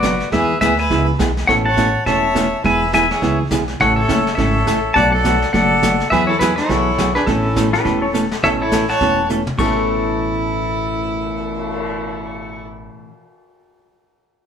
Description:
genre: country, western swing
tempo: 207 BPM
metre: 4/4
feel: swing 60% on 8ths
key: A major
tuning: A4 = 440 Hz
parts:
  - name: pedal steel guitar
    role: melody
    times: 0.0-12.7 s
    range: E4 to C#6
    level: -18 LUFS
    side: left 2 dB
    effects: none
  - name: clear fiddle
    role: second line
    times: 0.0-12.7 s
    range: C#4 to D5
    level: -23 LUFS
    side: right 3 dB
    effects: none
  - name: vintage hollow-body jazz guitar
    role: accompaniment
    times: 0.0-13.1 s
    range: A2 to A4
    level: -20 LUFS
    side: right 2 dB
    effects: none
  - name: upright bass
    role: bass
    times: 0.0-12.9 s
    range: E1 to E2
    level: -23 LUFS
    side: equal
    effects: none
  - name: vintage brush drum kit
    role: drums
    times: 0.0-11.8 s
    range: brushed snare drum, crash cymbal, cymbal swell, hi-hat, kick drum, snare drum, toms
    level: -26 LUFS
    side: left 1 dB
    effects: none
  - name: pedal steel guitar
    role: second line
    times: 7.7-12.7 s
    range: G4 to C#5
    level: -24 LUFS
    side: left 6 dB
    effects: none
room: wet studio reverb, RT60 0.8 s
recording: band playing live in one room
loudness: -14 LUFS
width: side -7 dB against mid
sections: 0.0-8.4 A section; 8.4-9.6 B section; 9.6-11.9 C section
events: drum fill 8.1, 9.3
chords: 0.3 E; 1.5 Aadd9; 2.6 E; 3.8 A; 5.0 Bm7; 6.1 Eadd9; 7.3 Aadd9

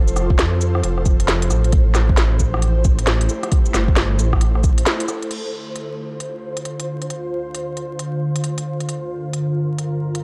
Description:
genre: future garage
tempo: 134 BPM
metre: 4/4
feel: swing 63% on 16ths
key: D minor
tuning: A4 = 441 Hz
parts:
  - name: ethereal airy pad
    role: sustained chords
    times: 0.0-10.2 s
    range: D2 to C5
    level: -27 LUFS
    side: equal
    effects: ensemble chorus, built-in reverb, sidechain pumping
  - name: dark detuned saw bass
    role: bass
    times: 0.0-4.8 s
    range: F1 to F2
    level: -20 LUFS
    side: equal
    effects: tube saturation, sidechain pumping
  - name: organic electronic drum kit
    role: drums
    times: 0.1-10.2 s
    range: cabasa, crash cymbal, hi-hat, rim click, snare drum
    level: -25 LUFS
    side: equal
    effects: none
  - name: electronic kick drum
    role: drums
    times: 0.3-4.8 s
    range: none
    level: -19 LUFS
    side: equal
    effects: none
room: little or no reverb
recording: dry, gritty hardware recording, transformer saturation, vinyl crackle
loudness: -19 LUFS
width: mono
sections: 0.0-5.3 A section; 5.3-10.2 B section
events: band accent 4.9; filter sweep on ambient pad 5.3-10.2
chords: 0.0 F; 1.7 Am7; 5.3 Dm7; 8.9 Gm7

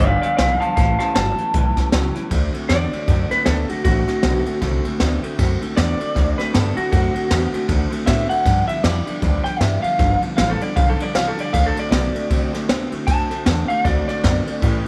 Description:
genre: rockabilly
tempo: 156 BPM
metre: 4/4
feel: swing 60% on 8ths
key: D mixolydian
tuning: A4 = 443 Hz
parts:
  - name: electric guitar through a small old amp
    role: melody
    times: 0.0-14.6 s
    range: F#4 to A5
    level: -24 LUFS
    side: equal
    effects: tape echo
  - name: picked steel-string acoustic guitar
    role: accompaniment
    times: 0.0-14.9 s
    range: G2 to G4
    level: -31 LUFS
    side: equal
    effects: none
  - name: electric guitar through a small old amp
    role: riff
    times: 0.0-14.9 s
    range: G2 to B3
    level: -29 LUFS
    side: equal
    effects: none
  - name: upright bass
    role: bass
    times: 0.0-14.9 s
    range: G1 to A2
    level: -24 LUFS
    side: equal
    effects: none
  - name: jazz brush drum kit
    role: drums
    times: 0.0-14.7 s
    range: hi-hat, kick drum, ride cymbal, snare drum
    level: -24 LUFS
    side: equal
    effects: none
room: light reverb, small room ambience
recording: none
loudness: -19 LUFS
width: mono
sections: 0.0-2.3 A section; 2.3-14.9 B section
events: clean electric guitar solo 2.3-14.9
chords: 0.0 G7; 0.8 A7; 2.3 D7; 8.5 G7; 11.5 D7

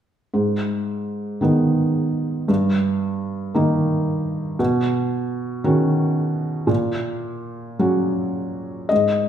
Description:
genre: neoclassical minimalist piano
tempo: 56 BPM (dotted quarters)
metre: 6/8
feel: rubato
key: G# minor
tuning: A4 = 440 Hz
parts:
  - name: felt-muted upright piano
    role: solo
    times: 0.3-9.3 s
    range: G2 to D#5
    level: -19 LUFS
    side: equal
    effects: none
room: wet large studio reverb, RT60 1.2 s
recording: band playing live in one room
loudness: -19 LUFS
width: side -9 dB against mid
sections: 0.3-8.9 A section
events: none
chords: 0.3 G#m; 2.5 D#/G; 4.6 Badd9; 6.7 F#/A#

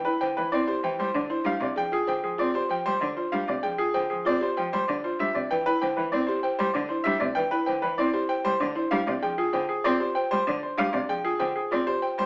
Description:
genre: classical, minimalist pattern music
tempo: 193 BPM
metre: 6/4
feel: straight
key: unclear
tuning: A4 = 440 Hz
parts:
  - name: clear grand piano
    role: melody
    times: 0.0-12.3 s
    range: Ab4 to G5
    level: -29 LUFS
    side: equal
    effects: none
  - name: buzzing marimba with soft mallets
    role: arpeggios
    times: 0.0-12.2 s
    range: D4 to C5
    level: -32 LUFS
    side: equal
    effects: none
  - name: rich cello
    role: accompaniment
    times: 0.2-12.3 s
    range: C3 to C4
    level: -33 LUFS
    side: equal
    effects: none
room: moderate large studio reverb, RT60 0.8 s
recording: small speaker sound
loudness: -26 LUFS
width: mono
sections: 0.0-12.3 A section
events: none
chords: 0.0 Cmaj7; 1.5 Fmadd9; 5.2 Cmaj7; 8.9 Fmadd9

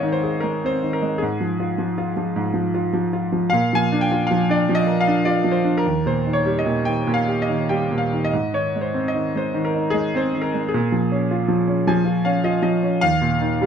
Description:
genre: classical, lyrical solo piano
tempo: 71-80 BPM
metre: 3/4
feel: rubato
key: Ab major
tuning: A4 = 444 Hz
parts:
  - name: bright concert grand piano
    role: solo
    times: 0.0-13.7 s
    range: Eb2 to Ab5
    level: -18 LUFS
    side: equal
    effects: none
room: moderate studio reverb, RT60 0.7 s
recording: none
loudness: -18 LUFS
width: side -7 dB against mid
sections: 0.0-13.7 A section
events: grand piano fill 11.5-13.0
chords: 0.0 Ab; 1.2 Fm/Ab; 3.5 Bb; 5.8 Eb; 8.3 Ab; 10.7 Bbm7; 13.0 Eb5

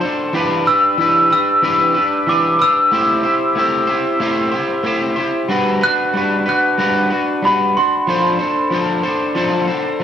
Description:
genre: indie pop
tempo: 93 BPM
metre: 4/4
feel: swing 55% on 16ths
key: G major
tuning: A4 = 445 Hz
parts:
  - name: electric guitar at the edge of break-up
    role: accompaniment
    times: 0.0-10.0 s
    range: E3 to C5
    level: -17 LUFS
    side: equal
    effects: analog chorus, warbly pitch drift
  - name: glockenspiel with rubber mallets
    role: melody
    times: 0.7-8.7 s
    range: B5 to F#6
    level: -16 LUFS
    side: equal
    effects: lush chorus
room: wet spring reverb, RT60 1.3 s, small room ambience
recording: dark, warm production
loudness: -14 LUFS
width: side -9 dB against mid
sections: 0.0-10.0 A section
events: none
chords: 0.3 Em7; 2.9 Am7; 5.5 Gmaj7; 8.1 F6

